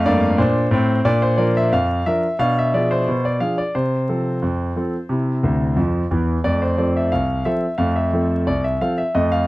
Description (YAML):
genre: ragtime piano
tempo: 89 BPM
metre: 2/4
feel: straight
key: F major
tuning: A4 = 438 Hz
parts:
  - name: clear concert grand piano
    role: solo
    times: 0.0-9.5 s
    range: C2 to F5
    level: -17 LUFS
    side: equal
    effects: none
room: little or no reverb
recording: dry, close 1970s-style studio recording, vinyl crackle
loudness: -17 LUFS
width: side -19 dB against mid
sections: 0.0-9.5 A section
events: grand piano fill 5.4-6.4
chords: 0.0 F; 1.0 Bb; 2.4 Bdim7; 3.7 F/C; 5.1 C; 6.4 F